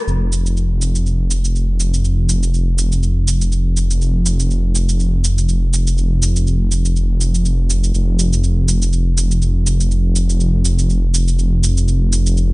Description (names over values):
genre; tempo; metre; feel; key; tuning
afro house; 122 BPM; 4/4; swing 56% on 16ths; unclear; A4 = 440 Hz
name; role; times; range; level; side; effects
dark detuned saw bass; bass; 0.1-12.5 s; F1; -14 LUFS; equal; none
cabasa; drums; 0.1-12.5 s; none; -23 LUFS; right 2 dB; small room reverb
room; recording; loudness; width
little or no reverb; dark, warm production, nothing above 10.3 kHz; -14 LUFS; side -23 dB against mid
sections
0.1-12.5 A section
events
none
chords
none